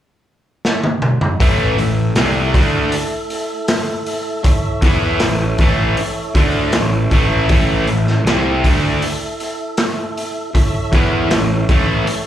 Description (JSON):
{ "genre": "blues rock power trio and southern rock", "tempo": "79 BPM", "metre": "4/4", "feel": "straight", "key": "A major", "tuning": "A4 = 440 Hz", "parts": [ { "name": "raw garage drum kit", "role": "drums", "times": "0.6-12.2 s", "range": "hi-hat, kick drum, snare drum, toms", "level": "-17 LUFS", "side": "equal", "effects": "none" }, { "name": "percussive tonewheel organ", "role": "sustained chords", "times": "1.4-12.3 s", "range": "A3 to E5", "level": "-24 LUFS", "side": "right 2 dB", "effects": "slow rotary speaker" }, { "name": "cranked stack guitar", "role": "riff", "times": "1.4-12.1 s", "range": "A2 to E4", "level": "-18 LUFS", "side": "equal", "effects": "overdrive, slapback echo" }, { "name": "fuzz picked electric bass", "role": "bass", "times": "1.4-12.1 s", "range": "A1 to E2", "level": "-20 LUFS", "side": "equal", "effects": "overdrive" } ], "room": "little or no reverb", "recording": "live gig heard through the venue's PA, club reverb", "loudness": "-14 LUFS", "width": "side -11 dB against mid", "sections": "0.0-1.4 A section; 1.4-12.3 B section", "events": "drum fill 0.6-1.4", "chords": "0.0 N.C.; 1.4 A" }